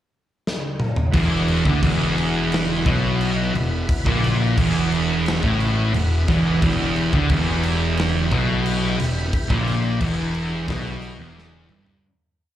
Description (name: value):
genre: stoner and doom metal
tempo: 88 BPM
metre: 4/4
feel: straight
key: E minor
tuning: A4 = 439 Hz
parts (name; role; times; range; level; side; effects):
- big rock drum kit; drums; 0.5-12.0 s; crash cymbal, kick drum, snare drum, toms; -25 LUFS; equal; none
- tonewheel organ; sustained chords; 1.1-12.0 s; E3 to B4; -32 LUFS; left 2 dB; slow rotary speaker
- thick fuzz guitar; riff; 1.1-12.0 s; E2 to D3; -25 LUFS; left 8 dB; distortion
- thick fuzz guitar; riff; 1.1-12.0 s; E2 to D3; -22 LUFS; right 4 dB; distortion
- fuzz picked electric bass; bass; 1.1-12.0 s; E1 to D2; -25 LUFS; left 1 dB; overdrive, tube saturation
room: small room ambience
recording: live gig heard through the venue's PA, club reverb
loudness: -18 LUFS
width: side -12 dB against mid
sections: 0.0-1.1 pickup bar; 1.1-12.0 riff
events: drum fill 0.4-1.1, 11.4-12.0; fade-out 9.3-12.0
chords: 0.0 N.C.; 1.1 Em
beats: 0.44 | 1.13 1.82 2.51 3.20 | 3.88 4.57 5.25 5.94 | 6.62 7.30 7.97 8.65 | 9.33 10.01 10.68 11.36